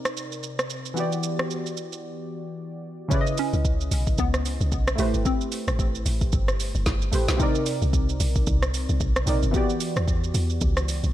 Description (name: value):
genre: amapiano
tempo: 112 BPM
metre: 4/4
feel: swing 58% on 16ths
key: unclear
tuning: A4 = 441 Hz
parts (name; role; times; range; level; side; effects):
- warm analog keys; accompaniment; 0.0-11.1 s; C3 to D#5; -29 LUFS; equal; chorus, low-pass filter
- afro-pop drum kit; drums; 0.1-11.1 s; hi-hat, kick drum, rim click, shaker, snare drum; -26 LUFS; equal; none
- hollow square pluck; melody; 3.4-6.3 s; A3 to C#4; -30 LUFS; equal; chorus, ping-pong delay
- deep log drum bass; bass; 3.5-11.1 s; F#1 to E2; -24 LUFS; equal; none
room: digital ambience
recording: none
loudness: -22 LUFS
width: side -13 dB against mid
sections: 0.0-3.1 A section; 3.1-11.1 B section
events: filter sweep on synth keys 0.0-3.1; break 2.0-3.1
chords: 0.0 Cm9; 1.0 Em9; 3.1 C#m9; 5.0 Am9; 7.4 Cm9; 9.5 Em9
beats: 0.43 | 0.97 1.50 2.04 2.58 | 3.11 3.65 4.18 4.72 | 5.25 5.79 6.33 6.86 | 7.40 7.93 8.47 9.01 | 9.54 10.08 10.61